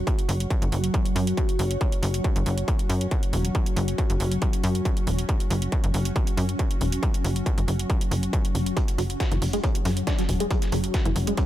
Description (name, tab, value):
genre	driving peak-time techno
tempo	138 BPM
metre	4/4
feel	straight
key	unclear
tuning	A4 = 440 Hz
part	tight sequencer bass	bass	0.0-11.3 s	E1 to F#2	-25 LUFS	equal	sidechain pumping
part	analog drone	drone	0.0-11.5 s	F#3	-32 LUFS	equal	chorus, sidechain pumping
part	granular cloud pad	texture	0.0-11.5 s	C#4 to C#6	-36 LUFS	left 1 dB	built-in reverb, sidechain pumping
part	electronic hi-hat	drums	0.1-11.5 s	none	-36 LUFS	right 2 dB	overdrive, sidechain pumping on hats, sidechain pumping on cymbals
part	electronic kick drum	drums	0.1-11.5 s	none	-25 LUFS	equal	distortion, overdrive
part	tight sequenced synth	riff	8.8-11.4 s	E3 to F#4	-30 LUFS	right 1 dB	chorus, phaser, sidechain pumping, ping-pong delay
part	dusty soul sampler-style drum kit	drums	8.8-11.5 s	hi-hat, snare drum	-39 LUFS	equal	sidechain pumping on hats, high-pass filter on hats, high-pass filter on snare
room	digital ambience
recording	none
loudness	-22 LUFS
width	side -13 dB against mid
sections	0.0-11.5 A section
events	fade-in on ambient pad 0.0-11.5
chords	0.0 F#5